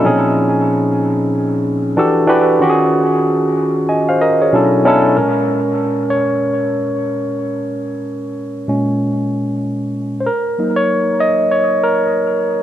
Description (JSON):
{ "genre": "R&B", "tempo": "94 BPM", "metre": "4/4", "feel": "swing 62% on 16ths", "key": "Bb minor", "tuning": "A4 = 443 Hz", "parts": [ { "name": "barky tine electric piano", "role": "solo", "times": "0.0-12.6 s", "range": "Bb2 to Ab5", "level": "-13 LUFS", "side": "equal", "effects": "overdrive, dub echo" } ], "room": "moderate spring reverb, RT60 2.5 s", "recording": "echo-heavy mix", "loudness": "-13 LUFS", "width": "side -11 dB against mid", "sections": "0.0-5.2 A section; 5.2-12.6 B section", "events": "tine electric piano solo 5.2-12.6", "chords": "0.0 Bbm11; 2.0 Em11; 2.6 Ebm11; 4.5 Bm11; 5.2 Bbm7; 10.3 Gb6" }